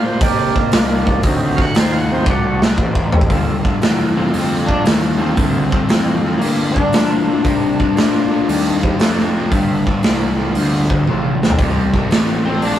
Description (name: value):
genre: blues rock power trio and southern rock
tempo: 116 BPM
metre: 4/4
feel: swing 67% on 8ths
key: G minor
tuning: A4 = 440 Hz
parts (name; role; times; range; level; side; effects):
- overdriven tonewheel organ; sustained chords; 0.0-12.8 s; Eb3 to F#5; -24 LUFS; right 2 dB; slow rotary speaker
- fuzz picked electric bass; bass; 0.0-12.8 s; F1 to C3; -21 LUFS; equal; overdrive
- raw garage drum kit; drums; 0.2-12.8 s; hi-hat, kick drum, snare drum, toms; -16 LUFS; equal; none
- overdriven semi-hollow guitar; riff; 3.3-12.8 s; G2 to A3; -21 LUFS; left 1 dB; none
- overdriven slide guitar; melody; 4.2-8.8, 12.4-12.8 s; Bb3 to D4; -19 LUFS; left 4 dB; analog delay
room: moderate small room reverb, RT60 0.5 s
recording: rough rehearsal-room recording, tube saturation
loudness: -13 LUFS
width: side -11 dB against mid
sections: 0.0-3.3 A section; 3.3-12.8 B section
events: tonewheel organ solo 0.0-3.3; drum fill 2.3-3.3, 11.1-11.6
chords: 0.2 Cm7; 1.2 D7b9; 3.3 Gm7; 7.4 Cm7; 9.5 Gm7; 11.6 Cm7